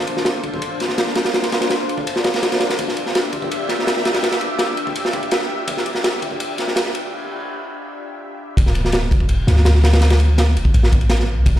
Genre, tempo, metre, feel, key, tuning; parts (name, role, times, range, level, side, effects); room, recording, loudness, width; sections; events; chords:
drum and bass, jungle; 166 BPM; 4/4; straight; D minor; A4 = 440 Hz
lush unison pad; sustained chords; 0.0-8.6 s; D4 to E5; -24 LUFS; left 1 dB; chorus, phaser, vintage 12-bit sampler grit
raw garage drum kit; drums; 0.1-11.6 s; kick drum, ride cymbal, snare drum; -19 LUFS; equal; high-pass filter on kick, high-pass filter on cymbals, high-pass filter on snare, high-pass filter on room
warm 808-style bass; bass; 8.6-11.6 s; D1 to D2; -15 LUFS; equal
light reverb, small room ambience; played on a big sound system in a bare room, large studio reverb; -16 LUFS; side -12 dB against mid
0.0-8.6 A section; 8.6-11.6 B section
build-up 0.0-8.6; break 7.1-8.6; drop 8.6-11.6
0.0 Dm7; 8.6 D5